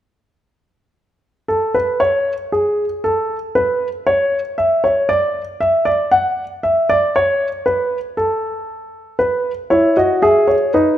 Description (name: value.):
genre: classical, baroque-style 3-part fugue for grand piano.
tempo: 58 BPM.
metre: 4/4.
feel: straight.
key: unclear.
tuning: A4 = 440 Hz.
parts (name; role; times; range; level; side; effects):
dark grand piano; solo; 1.5-11.0 s; D#4 to F#5; -14 LUFS; equal; none.
room: moderate recital hall reverb, RT60 1.7 s.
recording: none.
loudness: -14 LUFS.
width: side -12 dB against mid.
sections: 1.0-11.0 A section.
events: none.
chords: 1.0 N.C.; 9.2 E.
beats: | 0.96 2.00 3.04 4.07 | 5.10 6.12 7.15 8.17 | 9.19 10.22.